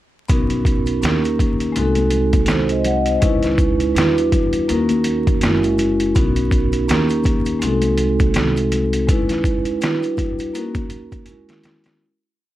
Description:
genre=hip hop, jazz-hop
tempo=82 BPM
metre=4/4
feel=swing 58% on 16ths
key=B major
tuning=A4 = 440 Hz
part: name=vibraphone with soft mallets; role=accompaniment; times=0.3-12.0 s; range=G3 to F#5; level=-18 LUFS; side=right 1 dB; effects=auto-pan, plate reverb
part: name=upright bass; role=bass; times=0.3-9.0 s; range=F#1 to E2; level=-23 LUFS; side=equal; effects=none
part: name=trip hop sampler-style drum kit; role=drums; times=0.3-12.0 s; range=hi-hat, kick drum, snare drum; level=-19 LUFS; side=equal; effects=overdrive
part: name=maracas and congas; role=percussion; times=0.3-12.0 s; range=none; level=-32 LUFS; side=left 4 dB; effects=none
room=moderate studio reverb, RT60 0.5 s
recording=vinyl crackle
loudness=-15 LUFS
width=side -14 dB against mid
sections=0.3-12.0 head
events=break 9.1-12.0; fade-out 9.1-12.0; drum fill 11.3-12.0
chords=0.3 Bmaj7; 1.0 D#7; 1.8 G#7b9/B#; 3.2 C#m9; 4.0 Em7; 4.7 D#m7; 5.4 F#7; 6.2 Bmaj7; 6.9 D#7; 7.6 G#7b9/B#; 9.1 C#m9; 9.8 Em7; 10.5 D#m7; 11.3 F#7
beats=| 0.30 1.03 1.76 2.50 | 3.23 3.96 4.69 5.42 | 6.15 6.89 7.62 8.35 | 9.08 9.81 10.54 11.28

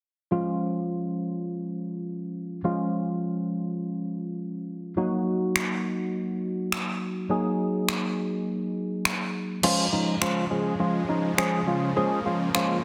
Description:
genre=dance-pop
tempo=103 BPM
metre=4/4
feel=straight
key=unclear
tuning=A4 = 440 Hz
part: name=tine electric piano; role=accompaniment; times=0.3-12.8 s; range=F3 to Ab4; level=-28 LUFS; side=equal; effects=analog chorus
part: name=crisp 8-bit digital drum machine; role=drums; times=5.6-12.7 s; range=crash cymbal, finger snaps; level=-30 LUFS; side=equal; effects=soft clipping on snare
part: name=supersaw chords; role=sustained chords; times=9.6-12.8 s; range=Db3 to Bb3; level=-35 LUFS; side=equal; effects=none
room=moderate lush hall reverb, RT60 1.7 s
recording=dense, heavily limited modern master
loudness=-28 LUFS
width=mono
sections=0.3-9.6 A section; 9.6-12.8 B section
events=none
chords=0.3 Db; 5.0 Ebm; 9.6 Db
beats=| 0.31 0.90 1.48 2.06 | 2.64 3.23 3.81 4.39 | 4.97 5.56 6.14 6.72 | 7.30 7.89 8.47 9.05 | 9.63 10.22 10.80 11.38 | 11.96 12.55

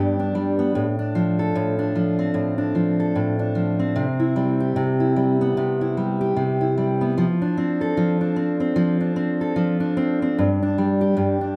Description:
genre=pop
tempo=75 BPM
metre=4/4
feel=swing 60% on 16ths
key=unclear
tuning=A4 = 440 Hz
part: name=fingerpicked steel-string acoustic guitar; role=solo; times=0.0-11.6 s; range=G2 to A4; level=-22 LUFS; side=equal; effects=none
room=wet large studio reverb, RT60 0.8 s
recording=band playing live in one room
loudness=-22 LUFS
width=mono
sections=0.0-11.6 A section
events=none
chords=0.0 G; 0.8 F6/A; 4.0 Cmaj7; 7.2 F6; 10.4 G5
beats=| 0.76 1.56 2.36 3.16 | 3.96 4.76 5.56 6.37 | 7.17 7.97 8.77 9.57 | 10.37 11.18

